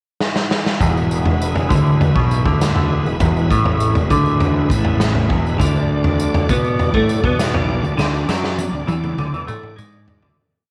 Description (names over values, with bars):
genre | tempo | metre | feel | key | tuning
psychedelic rock | 100 BPM | 4/4 | straight | E mixolydian | A4 = 439 Hz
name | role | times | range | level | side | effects
raw garage drum kit | drums | 0.2-10.4 s | kick drum, snare drum, toms | -21 LUFS | equal | none
bright tonewheel organ | sustained chords | 0.8-10.3 s | G#3 to D5 | -31 LUFS | equal | slow rotary speaker, chorus vibrato
semi-hollow electric guitar | riff | 0.8-10.4 s | E2 to B3 | -21 LUFS | equal | phaser, double-tracked
fuzz fingered electric bass | bass | 0.8-10.4 s | E1 to B2 | -25 LUFS | equal | overdrive, tube saturation
tambourine | percussion | 0.8-10.2 s | none | -40 LUFS | equal | none
room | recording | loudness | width
light reverb, studio reverb | none | -17 LUFS | mono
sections
0.0-0.8 pickup bar; 0.8-10.4 riff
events
drum fill 0.2-0.8, 8.0-10.4; fade-out 8.0-10.4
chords
0.0 N.C.; 0.8 E; 5.6 D5